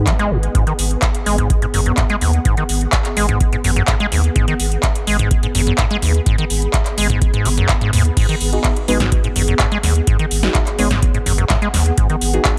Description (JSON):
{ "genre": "acid house", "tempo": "126 BPM", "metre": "4/4", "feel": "straight", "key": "G# minor pentatonic", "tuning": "A4 = 441 Hz", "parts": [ { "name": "acid bass, square", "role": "riff", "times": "0.0-12.2 s", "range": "G#1 to G#3", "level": "-22 LUFS", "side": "equal", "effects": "overdrive, sidechain pumping, tape echo" }, { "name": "ethereal airy pad", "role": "texture", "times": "0.0-12.6 s", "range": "B3 to B5", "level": "-28 LUFS", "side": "equal", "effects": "ensemble chorus, built-in reverb, sidechain pumping" }, { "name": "electro analog drum machine", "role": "drums", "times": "0.1-12.6 s", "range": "crash cymbal, handclaps, hi-hat, snare drum", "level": "-24 LUFS", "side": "equal", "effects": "none" }, { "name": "electronic kick drum", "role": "drums", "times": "0.1-12.6 s", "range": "none", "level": "-20 LUFS", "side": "equal", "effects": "none" }, { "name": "saturated sub bass", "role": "bass", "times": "0.3-12.4 s", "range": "G#1 to D#2", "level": "-20 LUFS", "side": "equal", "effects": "sidechain pumping" }, { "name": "deep mellow chord stab", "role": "stabs", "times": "8.5-12.4 s", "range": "B3 to C#5", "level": "-24 LUFS", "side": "equal", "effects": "chorus, tape echo" } ], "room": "little or no reverb", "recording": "none", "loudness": "-16 LUFS", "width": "mono", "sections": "0.0-12.6 A section", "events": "filter sweep on acid bass 0.0-12.6", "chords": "0.0 G#m7", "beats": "0.07 | 0.55 1.02 1.50 1.98 | 2.45 2.93 3.41 3.88 | 4.36 4.83 5.31 5.79 | 6.26 6.74 7.22 7.69 | 8.17 8.64 9.12 9.60 | 10.07 10.55 11.03 11.50 | 11.98 12.45" }